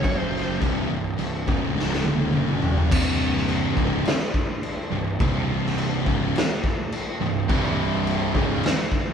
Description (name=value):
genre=stoner and doom metal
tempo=105 BPM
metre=4/4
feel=straight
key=unclear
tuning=A4 = 438 Hz
part: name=fuzz lead guitar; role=melody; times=0.0-0.6 s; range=Db5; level=-30 LUFS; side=equal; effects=wah, distortion
part: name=thick fuzz guitar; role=riff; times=0.0-8.6 s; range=C2 to F#3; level=-28 LUFS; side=left 7 dB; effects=distortion
part: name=thick fuzz guitar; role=riff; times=0.0-8.6 s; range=C2 to F#3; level=-27 LUFS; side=right 6 dB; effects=distortion
part: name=fuzz picked electric bass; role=bass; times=0.0-8.6 s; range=C1 to F#1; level=-31 LUFS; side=equal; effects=overdrive
part: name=raw garage drum kit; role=drums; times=0.0-9.1 s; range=crash cymbal, kick drum, snare drum, toms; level=-24 LUFS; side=equal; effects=none
part: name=overdriven electric guitar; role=riff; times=7.5-8.6 s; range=C2 to Db3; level=-28 LUFS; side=equal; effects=none
room=moderate stone room reverb, RT60 1.2 s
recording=band playing live in one room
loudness=-21 LUFS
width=side -7 dB against mid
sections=0.0-2.9 A section; 2.9-9.1 B section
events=drum fill 1.8-2.9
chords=0.0 F#5; 0.6 C5; 1.8 Db5; 2.3 F#5; 2.9 C5